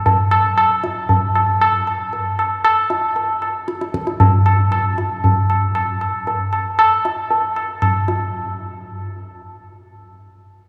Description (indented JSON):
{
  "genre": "indian classical",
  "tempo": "free time",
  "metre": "none",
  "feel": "none",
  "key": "none",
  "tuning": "none",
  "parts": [
    { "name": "tabla", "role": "percussion", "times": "0.1-8.3 s", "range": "none", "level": "-18 LUFS", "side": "equal", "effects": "none" }
  ],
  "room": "wet cathedral reverb, RT60 4.7 s",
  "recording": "recorded in a church or concert hall",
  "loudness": "-18 LUFS",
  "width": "mono",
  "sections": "0.0-8.3 A section; 8.3-10.7 B section",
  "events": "none",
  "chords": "none"
}